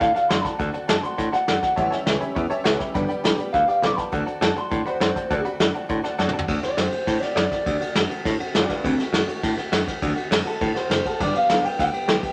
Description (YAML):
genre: rockabilly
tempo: 204 BPM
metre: 4/4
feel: straight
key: D mixolydian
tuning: A4 = 440 Hz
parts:
  - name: electric guitar through a small old amp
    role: melody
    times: 0.0-12.3 s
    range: C4 to D6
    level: -26 LUFS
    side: equal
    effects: none
  - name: picked steel-string acoustic guitar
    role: accompaniment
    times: 0.0-12.3 s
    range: G2 to G4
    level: -33 LUFS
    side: equal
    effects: none
  - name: tack piano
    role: accompaniment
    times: 0.0-6.4 s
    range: C#5 to D6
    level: -32 LUFS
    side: equal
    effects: none
  - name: modern bright picked electric bass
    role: bass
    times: 0.0-12.3 s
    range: F#1 to A2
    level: -30 LUFS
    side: equal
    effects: none
  - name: vintage brush drum kit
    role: drums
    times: 0.0-12.3 s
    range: hi-hat, kick drum, ride cymbal, snare drum, toms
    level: -27 LUFS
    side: equal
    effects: none
room: wet studio reverb, RT60 0.8 s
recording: none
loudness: -23 LUFS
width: mono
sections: 0.0-6.5 A section; 6.5-12.3 B section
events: drum fill 6.2; clean electric guitar solo 6.5-12.3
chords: 0.0 D7; 1.8 A7; 2.9 G7; 4.1 D7; 11.2 G7